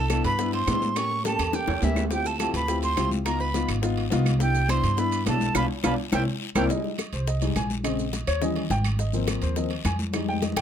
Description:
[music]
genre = Afro-Cuban jazz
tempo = 209 BPM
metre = 4/4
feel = straight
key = unclear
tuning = A4 = 442 Hz
[part]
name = silver concert flute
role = melody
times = 0.0-6.7 s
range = E5 to C#6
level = -28 LUFS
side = right 3 dB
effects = none
[part]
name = mandolin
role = second line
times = 0.0-6.6 s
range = E4 to C#5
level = -35 LUFS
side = right 6 dB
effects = none
[part]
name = warm baby grand piano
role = accompaniment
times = 0.0-10.6 s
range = Db3 to Ab5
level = -28 LUFS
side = left 4 dB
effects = none
[part]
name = upright bass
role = bass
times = 0.0-10.6 s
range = G#1 to A2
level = -27 LUFS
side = right 1 dB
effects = none
[part]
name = bongos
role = percussion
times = 0.1-10.6 s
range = none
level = -34 LUFS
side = left 8 dB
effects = none
[part]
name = claves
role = percussion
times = 0.1-10.6 s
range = none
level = -35 LUFS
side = right 7 dB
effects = none
[part]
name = congas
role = percussion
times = 0.1-10.6 s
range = none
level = -33 LUFS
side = left 1 dB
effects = none
[part]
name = guiro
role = percussion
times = 0.1-10.6 s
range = none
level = -41 LUFS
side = left 8 dB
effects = none
[part]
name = maracas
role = percussion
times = 0.1-10.6 s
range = none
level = -41 LUFS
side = right 9 dB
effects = none
[part]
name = timbales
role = percussion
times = 0.1-10.6 s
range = none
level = -36 LUFS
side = right 7 dB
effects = none
[sound]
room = little or no reverb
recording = close, detailed microphones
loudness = -23 LUFS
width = side -9 dB against mid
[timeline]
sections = 0.0-6.7 A section; 6.7-10.6 B section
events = drum fill 1.2-2.1, 5.6-6.7, 10.1-10.6; band accent 5.6-6.7; grand piano solo 6.7-10.6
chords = 0.0 Cmaj9; 1.0 A7b9; 2.1 Dm11; 3.3 C#9; 4.4 Cmaj9; 5.6 Bm7b5; 6.1 C7; 6.7 Bb13sus4; 7.8 Bbm9; 8.4 Eb7b9; 9.0 Ab69

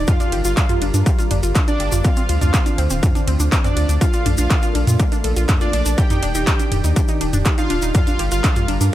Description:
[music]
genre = melodic techno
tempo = 122 BPM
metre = 4/4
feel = straight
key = unclear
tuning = A4 = 440 Hz
[part]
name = lush unison pad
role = sustained chords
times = 0.0-8.9 s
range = D3 to Bb4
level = -28 LUFS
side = equal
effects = chorus, sidechain pumping
[part]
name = warbly dusty pluck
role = arpeggios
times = 0.0-8.8 s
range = C4 to A4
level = -26 LUFS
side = right 1 dB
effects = chorus, sidechain pumping, analog delay
[part]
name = round analog bass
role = bass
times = 0.0-8.9 s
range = D1 to Bb2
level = -19 LUFS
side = equal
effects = tube saturation, sidechain pumping
[part]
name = soft supersaw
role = melody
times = 0.1-8.6 s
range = D4 to G5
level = -26 LUFS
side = equal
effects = sidechain pumping, dub echo
[part]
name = electronic kick drum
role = drums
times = 0.1-8.5 s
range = none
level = -17 LUFS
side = equal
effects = distortion, overdrive
[part]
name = techno drum kit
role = drums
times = 0.1-8.9 s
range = handclaps, hi-hat, ride cymbal, toms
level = -24 LUFS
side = right 1 dB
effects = overdrive, sidechain pumping on hats, sidechain pumping on cymbals, sidechain pumping on toms
[part]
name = tube shaker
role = percussion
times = 0.1-8.9 s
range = none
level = -31 LUFS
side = left 2 dB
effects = none
[sound]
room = little or no reverb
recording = echo-heavy mix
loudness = -15 LUFS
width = side -13 dB against mid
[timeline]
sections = 0.0-8.9 A section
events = none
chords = 0.1 Gm7; 2.0 Dm7; 4.0 Bbmaj7; 6.0 Ebmaj7; 7.9 Gm7

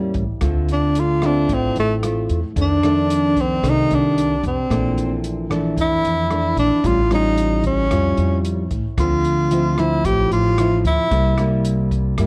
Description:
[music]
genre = bossa nova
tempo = 112 BPM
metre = 4/4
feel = straight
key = unclear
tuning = A4 = 435 Hz
[part]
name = nylon-string guitar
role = accompaniment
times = 0.0-12.3 s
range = F2 to F4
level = -24 LUFS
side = equal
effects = none
[part]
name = upright bass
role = bass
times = 0.0-12.3 s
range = A1 to G2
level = -24 LUFS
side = equal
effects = none
[part]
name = open jazz drum kit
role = drums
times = 0.1-12.3 s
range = hi-hat, kick drum, rim click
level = -30 LUFS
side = equal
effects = none
[part]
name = breathy tenor saxophone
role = melody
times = 0.7-11.6 s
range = A3 to G4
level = -22 LUFS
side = equal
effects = analog delay
[sound]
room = moderate studio reverb, RT60 0.6 s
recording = worn, warbling old tape, cassette tape, warbly pitch drift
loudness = -19 LUFS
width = mono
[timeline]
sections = 0.0-12.3 A section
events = tenor saxophone solo 0.0-12.3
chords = 0.4 Dm7; 2.6 F6; 4.7 Bbmaj9#11; 6.8 Aaug7; 9.0 Dm9; 11.1 C7

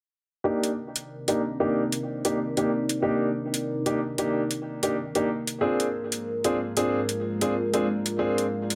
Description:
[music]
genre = glitch hop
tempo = 93 BPM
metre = 4/4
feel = swing 59% on 16ths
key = C minor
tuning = A4 = 440 Hz
[part]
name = dark analog pad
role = sustained chords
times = 0.8-8.8 s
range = Ab3 to D5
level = -32 LUFS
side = equal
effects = chorus, phaser
[part]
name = clear grand piano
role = stabs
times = 0.4-8.4 s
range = Bb3 to Ab4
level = -29 LUFS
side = equal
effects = low-pass filter, digital delay
[part]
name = electronic hi-hat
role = drums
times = 0.6-8.8 s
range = none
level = -32 LUFS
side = equal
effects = none
[sound]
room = light reverb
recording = none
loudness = -27 LUFS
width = mono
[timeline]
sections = 0.4-8.8 A section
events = filter sweep on grand piano 0.4-8.8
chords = 0.4 Cm9; 5.6 Bb7

